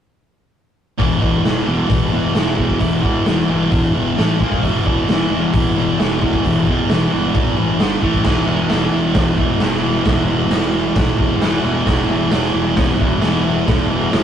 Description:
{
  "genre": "garage rock duo or trio",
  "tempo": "132 BPM",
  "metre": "4/4",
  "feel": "straight",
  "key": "unclear",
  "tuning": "A4 = 440 Hz",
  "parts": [
    { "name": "thick fuzz guitar", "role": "riff", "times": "1.0-14.2 s", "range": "E2 to A#3", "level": "-17 LUFS", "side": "equal", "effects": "distortion" },
    { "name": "fuzz fingered electric bass", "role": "bass", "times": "1.0-14.2 s", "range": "E1 to A#1", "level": "-24 LUFS", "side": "equal", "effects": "overdrive" },
    { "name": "raw garage drum kit", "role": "drums", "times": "1.0-14.2 s", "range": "crash cymbal, hi-hat, kick drum, snare drum", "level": "-18 LUFS", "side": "equal", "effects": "none" }
  ],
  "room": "moderate booth ambience, RT60 0.3 s",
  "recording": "rough rehearsal-room recording",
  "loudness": "-14 LUFS",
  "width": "side -9 dB against mid",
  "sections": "1.0-8.2 A section; 8.2-14.2 B section",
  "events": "none",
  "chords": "1.0 E5; 4.2 A5; 4.4 A#5; 4.6 E5; 7.8 G5; 8.0 A5; 8.2 E5"
}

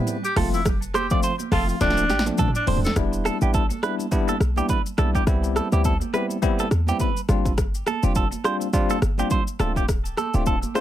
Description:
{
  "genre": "afrobeats",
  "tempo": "104 BPM",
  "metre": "4/4",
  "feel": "swing 58% on 16ths",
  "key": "unclear",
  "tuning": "A4 = 440 Hz",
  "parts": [
    { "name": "bell-like tine electric piano", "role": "accompaniment", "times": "0.0-10.8 s", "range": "F3 to F4", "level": "-26 LUFS", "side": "left 3 dB", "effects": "medium stereo tremolo" },
    { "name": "deep house drum kit", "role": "drums", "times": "0.1-10.8 s", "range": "hi-hat, kick drum, rim click, shaker, snare drum, toms", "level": "-25 LUFS", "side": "equal", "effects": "overdrive" },
    { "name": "congas", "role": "percussion", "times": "0.1-10.7 s", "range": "none", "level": "-33 LUFS", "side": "right 8 dB", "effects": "none" },
    { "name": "raspy alto saxophone", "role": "melody", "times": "0.2-2.9 s", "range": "D4 to A4", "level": "-27 LUFS", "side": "equal", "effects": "tape echo" },
    { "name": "direct-recorded clean electric guitar", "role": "riff", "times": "0.4-10.8 s", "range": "G4 to D5", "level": "-28 LUFS", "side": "right 5 dB", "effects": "phaser, tape echo" },
    { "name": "short 808-style bass", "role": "bass", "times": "0.4-10.6 s", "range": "D1 to E2", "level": "-24 LUFS", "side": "equal", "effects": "none" }
  ],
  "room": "light reverb",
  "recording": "none",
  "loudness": "-20 LUFS",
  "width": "side -12 dB against mid",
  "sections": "0.0-3.0 A section; 3.0-10.8 B section",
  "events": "drum fill 1.8-3.0",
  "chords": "0.4 F; 1.8 Dm7; 3.0 Em7; 5.3 Cmaj7; 7.3 G7sus4; 9.6 Dm7"
}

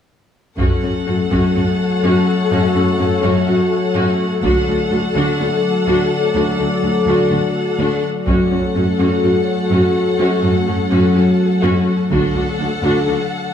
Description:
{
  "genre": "cinematic, hybrid orchestral and electronic film score",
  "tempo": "125 BPM",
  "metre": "4/4",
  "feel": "straight",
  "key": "F# minor",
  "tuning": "A4 = 435 Hz",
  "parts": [
    { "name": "rich studio violin section", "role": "second line", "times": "0.6-13.5 s", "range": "A4 to F#5", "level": "-22 LUFS", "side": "left 5 dB", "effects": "none" },
    { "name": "rich symphonic viola section", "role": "accompaniment", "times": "0.6-13.2 s", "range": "C#4 to F#4", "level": "-21 LUFS", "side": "right 2 dB", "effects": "none" },
    { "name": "analog drone", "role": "sustained chords", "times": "1.3-13.5 s", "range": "F#3 to D5", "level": "-18 LUFS", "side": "left 1 dB", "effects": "chorus" },
    { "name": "thumb-piano-like synth pluck", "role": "arpeggios", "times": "0.6-13.2 s", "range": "D3 to F#4", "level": "-22 LUFS", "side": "left 3 dB", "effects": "chorus, tape echo" },
    { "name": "rich symphonic cello section", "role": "bass", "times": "0.6-13.2 s", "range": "D2 to F#2", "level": "-21 LUFS", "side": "right 1 dB", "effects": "none" },
    { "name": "taiko ensemble", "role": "drums", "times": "0.6-1.5, 4.4-5.4, 8.3-9.2, 12.1-13.0 s", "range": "none", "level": "-22 LUFS", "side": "equal", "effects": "none" }
  ],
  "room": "moderate scoring stage reverb, RT60 1.5 s",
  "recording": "small room reverb",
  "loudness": "-14 LUFS",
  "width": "side -9 dB against mid",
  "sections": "0.6-13.5 A section",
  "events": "none",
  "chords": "0.6 F#m; 4.4 D; 8.3 F#m; 12.1 D"
}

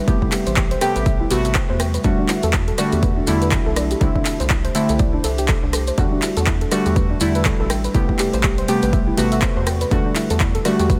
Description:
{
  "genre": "deep house",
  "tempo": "122 BPM",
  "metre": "4/4",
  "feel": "swing 58% on 16ths",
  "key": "E minor",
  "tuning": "A4 = 440 Hz",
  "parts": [
    { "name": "warbly tape-like pad", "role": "sustained chords", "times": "0.0-11.0 s", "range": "G3 to E5", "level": "-31 LUFS", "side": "equal", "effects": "chorus, built-in reverb, sidechain pumping" },
    { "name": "soft round pluck", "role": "arpeggios", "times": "0.0-11.0 s", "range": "D4 to G5", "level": "-28 LUFS", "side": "equal", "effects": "chorus, sidechain pumping, dub echo" },
    { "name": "deep mellow chord stab", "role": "stabs", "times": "0.1-11.0 s", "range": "C3 to G4", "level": "-24 LUFS", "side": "equal", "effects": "chorus, sidechain pumping, dub echo" },
    { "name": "rubbery square bass", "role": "bass", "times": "0.1-11.0 s", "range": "A1 to E2", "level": "-25 LUFS", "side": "equal", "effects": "tube saturation, sidechain pumping" },
    { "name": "electronic kick drum", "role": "drums", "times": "0.1-11.0 s", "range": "none", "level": "-23 LUFS", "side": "equal", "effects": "overdrive, small room ambience" },
    { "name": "punchy analog drum machine", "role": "drums", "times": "0.1-11.0 s", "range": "handclaps, hi-hat, ride cymbal, rim click", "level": "-28 LUFS", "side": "equal", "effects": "overdrive, small room ambience" },
    { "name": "maracas", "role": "percussion", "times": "0.1-11.0 s", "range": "none", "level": "-33 LUFS", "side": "equal", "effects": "none" }
  ],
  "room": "light reverb",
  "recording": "none",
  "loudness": "-19 LUFS",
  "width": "mono",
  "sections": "0.0-11.0 A section",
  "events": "none",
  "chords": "0.0 Am9; 2.0 Em11; 4.0 C69; 6.0 Em11; 7.7 Am9; 9.9 Em11"
}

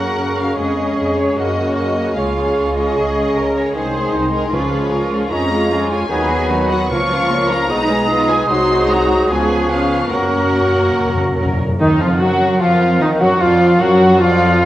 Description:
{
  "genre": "classical, dramatic, fast romantic movement for symphony orchestra",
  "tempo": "150 BPM",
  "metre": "4/4",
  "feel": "rubato",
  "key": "F# major",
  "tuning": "A4 = 442 Hz",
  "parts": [
    { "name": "warm symphonic violin section", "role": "melody", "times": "0.0-14.7 s", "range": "A#4 to C#6", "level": "-24 LUFS", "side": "left 2 dB", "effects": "none" },
    { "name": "mellow clarinet", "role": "second line", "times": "0.0-14.7 s", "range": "Eb4 to B4", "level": "-24 LUFS", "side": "equal", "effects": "none" },
    { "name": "small flute group", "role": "second line", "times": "0.0-14.7 s", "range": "Eb5 to D#6", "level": "-22 LUFS", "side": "equal", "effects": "none" },
    { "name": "warm studio violin section", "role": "second line", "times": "0.0-14.7 s", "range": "C#4 to E#5", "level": "-24 LUFS", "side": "left 2 dB", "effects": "none" },
    { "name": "mellow bassoon", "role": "accompaniment", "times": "0.0-14.7 s", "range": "C#3 to G#3", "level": "-22 LUFS", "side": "right 1 dB", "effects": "none" },
    { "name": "warm symphonic viola section", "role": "accompaniment", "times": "0.0-14.7 s", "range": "D#3 to E#4", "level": "-22 LUFS", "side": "right 1 dB", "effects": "none" },
    { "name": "mellow French horn section", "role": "sustained chords", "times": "0.0-14.7 s", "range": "Eb3 to F#4", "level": "-21 LUFS", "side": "left 2 dB", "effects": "none" },
    { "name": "clear symphonic double bass section", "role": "bass", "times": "0.0-14.7 s", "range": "B1 to F#2", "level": "-23 LUFS", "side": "right 2 dB", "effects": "none" },
    { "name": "warm symphonic cello section", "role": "bass", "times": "0.0-14.7 s", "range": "Eb3 to A#4", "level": "-24 LUFS", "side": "right 2 dB", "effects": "none" },
    { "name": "timpani", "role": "percussion", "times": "4.5-7.5, 10.1-11.8 s", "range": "F#2 to C#3", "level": "-24 LUFS", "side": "left 1 dB", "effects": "none" },
    { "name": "mellow oboe", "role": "second line", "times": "11.8-14.7 s", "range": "Eb4 to Gb4", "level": "-23 LUFS", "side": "right 1 dB", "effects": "none" }
  ],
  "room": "wet recital hall reverb, RT60 1.6 s",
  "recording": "worn, warbling old tape, cassette tape, warbly pitch drift",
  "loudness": "-13 LUFS",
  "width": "side -14 dB against mid",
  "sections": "0.0-11.8 A section; 11.8-14.7 B section",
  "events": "timpani fill 10.1-11.8",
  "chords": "0.0 F#; 0.6 C#/E#; 1.4 F#; 2.2 C#; 3.8 G#/B#; 4.5 C#; 5.3 C#/E#; 6.1 B/D#; 6.9 A#m/C#; 7.7 G#m/B; 8.5 G#7/B#; 9.3 C#7; 10.1 F#; 11.8 Ebm; 13.4 Bb/F"
}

